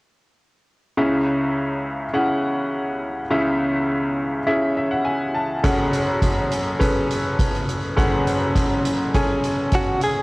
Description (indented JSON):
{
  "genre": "piano-driven pop",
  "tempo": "103 BPM",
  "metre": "4/4",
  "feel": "straight",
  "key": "unclear",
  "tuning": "A4 = 442 Hz",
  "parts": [
    { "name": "bright upright piano", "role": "accompaniment", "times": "1.0-10.2 s", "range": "F#1 to A5", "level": "-20 LUFS", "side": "equal", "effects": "cassette tape" },
    { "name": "soft-mallet drum kit", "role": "drums", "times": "5.6-10.1 s", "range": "hi-hat, kick drum", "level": "-22 LUFS", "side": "equal", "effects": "cassette tape" },
    { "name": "direct-recorded clean electric guitar", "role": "melody", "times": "9.8-10.2 s", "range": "F#4 to G#4", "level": "-20 LUFS", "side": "equal", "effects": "tremolo" }
  ],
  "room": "moderate spring reverb, RT60 2.0 s",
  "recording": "home recording on cassette",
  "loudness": "-19 LUFS",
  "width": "side -23 dB against mid",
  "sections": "1.0-10.2 A section",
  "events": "upright piano fill 4.5-5.6",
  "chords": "1.0 C#m; 5.6 F#madd9"
}